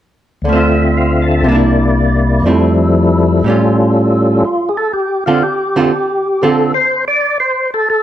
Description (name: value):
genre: jazz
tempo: 121 BPM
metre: 4/4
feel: swing 67% on 8ths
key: D minor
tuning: A4 = 436 Hz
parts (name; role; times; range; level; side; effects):
- percussive tonewheel organ; melody; 0.4-8.0 s; C2 to A5; -12 LUFS; left 1 dB; slow rotary speaker, overdrive, chorus vibrato
- archtop guitar, miked and amplified; accompaniment; 0.4-6.7 s; A2 to A4; -15 LUFS; right 4 dB; none
room: light reverb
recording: none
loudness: -10 LUFS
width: side -11 dB against mid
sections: 0.5-4.4 A section; 4.4-8.0 B section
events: none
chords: 0.5 Dm7; 1.5 C9; 2.5 Fmaj7; 3.4 A7b13; 4.4 Dm7